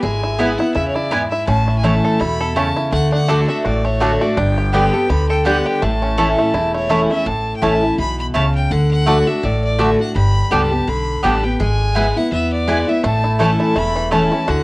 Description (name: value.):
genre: bluegrass.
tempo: 166 BPM.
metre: 4/4.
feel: swing 55% on 8ths.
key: A mixolydian.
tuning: A4 = 440 Hz.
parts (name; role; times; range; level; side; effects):
bluegrass banjo; melody; 0.0-7.3, 13.0-14.6 s; E3 to A4; -22 LUFS; right 1 dB; cassette tape, plate reverb.
clear fiddle; melody; 0.0-14.6 s; C#5 to B5; -23 LUFS; left 1 dB; cassette tape, plate reverb.
picked steel-string acoustic guitar; accompaniment; 0.0-14.6 s; E2 to G4; -18 LUFS; left 1 dB; cassette tape, plate reverb.
upright bass; bass; 0.0-14.6 s; E1 to E2; -20 LUFS; equal; none.
mandolin; stabs; 0.4-14.2 s; A3 to A5; -20 LUFS; right 1 dB; cassette tape, plate reverb.
room: moderate booth ambience, RT60 0.3 s.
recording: home recording on cassette.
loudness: -14 LUFS.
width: side -22 dB against mid.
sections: 0.0-7.3 A section; 7.3-14.6 A section.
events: none.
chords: 0.0 E/G#; 1.5 A; 2.9 D; 4.4 G; 5.8 A; 8.7 D; 10.2 G; 11.6 E/G#; 13.0 A.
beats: | 0.04 0.40 0.76 1.12 | 1.48 1.84 2.21 2.57 | 2.93 3.29 3.65 4.01 | 4.38 4.74 5.10 5.46 | 5.82 6.18 6.54 6.91 | 7.27 7.63 7.99 8.35 | 8.71 9.07 9.43 9.79 | 10.15 10.52 10.88 11.24 | 11.60 11.96 12.32 12.68 | 13.04 13.40 13.76 14.12 | 14.49.